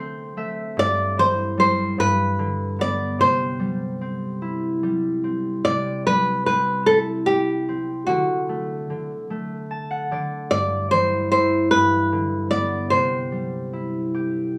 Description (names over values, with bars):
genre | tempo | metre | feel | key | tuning
children's music, lullaby | 50 BPM (dotted quarters) | 6/8 | straight | C major | A4 = 439 Hz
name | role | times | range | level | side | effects
concert harp | accompaniment | 0.0-14.6 s | G2 to A5 | -27 LUFS | equal | none
flamenco guitar | melody | 0.8-14.5 s | F#4 to D5 | -23 LUFS | equal | plate reverb
room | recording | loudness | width
moderate studio reverb, RT60 0.6 s | small room ambience | -22 LUFS | mono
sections
0.0-5.7 A section; 5.7-14.6 A section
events
harp fill 0.0-0.8, 9.3-10.5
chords
0.0 D7(no3); 0.8 Cadd9/G; 2.0 G; 3.2 C; 8.1 D; 10.5 Cadd9/G; 11.7 G; 12.9 C